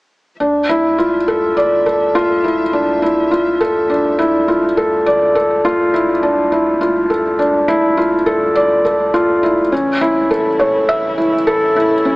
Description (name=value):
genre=piano and strings electronica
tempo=103 BPM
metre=4/4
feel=straight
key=D harmonic minor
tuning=A4 = 438 Hz
part: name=dark string quartet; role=sustained chords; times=0.4-12.2 s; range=C#3 to E5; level=-31 LUFS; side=equal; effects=none
part: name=felt-muted upright piano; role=riff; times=0.4-12.2 s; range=C#4 to E5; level=-12 LUFS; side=equal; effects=tape echo
part: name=warm sub bass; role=bass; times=0.4-12.2 s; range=A1 to D2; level=-39 LUFS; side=equal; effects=none
room=moderate huge ambient reverb, RT60 5.0 s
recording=small speaker sound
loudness=-12 LUFS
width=side -23 dB against mid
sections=0.4-12.2 A section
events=fade-in on string quartet 0.4-12.2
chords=0.4 Dmadd9; 9.7 A